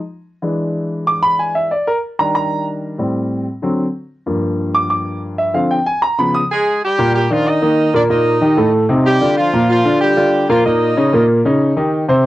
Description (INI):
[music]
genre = latin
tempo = 188 BPM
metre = 4/4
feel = straight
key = unclear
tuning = A4 = 440 Hz
[part]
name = warm grand piano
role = accompaniment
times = 0.4-12.3 s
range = G2 to Eb6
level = -14 LUFS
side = equal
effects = cassette tape
[part]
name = clear horn section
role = melody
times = 6.5-11.2 s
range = F3 to Eb5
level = -16 LUFS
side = right 1 dB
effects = none
[sound]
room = moderate studio reverb, RT60 0.6 s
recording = home recording on cassette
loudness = -13 LUFS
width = side -16 dB against mid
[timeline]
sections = 0.0-6.8 A section; 6.8-12.3 B section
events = grand piano solo 0.0-6.8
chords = 0.4 E7; 1.7 Ebmaj7; 3.0 Am7; 3.6 D7; 4.3 Gm7; 5.5 Dm7b5; 6.2 Db7; 6.8 Ebmaj7; 8.1 Eb; 8.7 F7; 9.4 Bb6; 10.7 Eb7